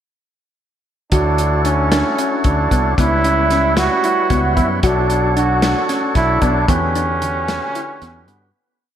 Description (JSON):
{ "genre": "progressive instrumental, band music in an uneven meter", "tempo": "226 BPM (eighths)", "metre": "7/8", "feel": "straight", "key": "unclear", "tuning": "A4 = 440 Hz", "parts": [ { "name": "breathy flugelhorn", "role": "second line", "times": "1.1-8.5 s", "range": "B3 to F#4", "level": "-18 LUFS", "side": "right 2 dB", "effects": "slapback echo" }, { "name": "tonewheel organ", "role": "accompaniment", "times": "1.1-8.5 s", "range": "D3 to C#5", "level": "-21 LUFS", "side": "right 1 dB", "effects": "overdrive, stopped rotary speaker, slapback echo" }, { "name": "thumb-piano-like synth pluck", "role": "arpeggios", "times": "1.1-8.4 s", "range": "D3 to F#4", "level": "-22 LUFS", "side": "left 1 dB", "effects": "chorus, digital delay" }, { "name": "fretless electric bass", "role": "bass", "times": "1.1-8.5 s", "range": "B1 to G2", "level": "-20 LUFS", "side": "left 1 dB", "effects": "none" }, { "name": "warm soul drum kit", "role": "drums", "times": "1.1-8.4 s", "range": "hi-hat, kick drum, snare drum", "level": "-20 LUFS", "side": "left 1 dB", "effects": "none" } ], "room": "wet lush hall reverb, RT60 2.1 s", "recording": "big arena sound", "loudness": "-14 LUFS", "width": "side -10 dB against mid", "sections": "1.1-8.5 groove", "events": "fade-out 6.7-8.5", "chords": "1.1 Dmaj7; 3.0 Em69/C#; 4.8 Bm7; 6.7 Em7" }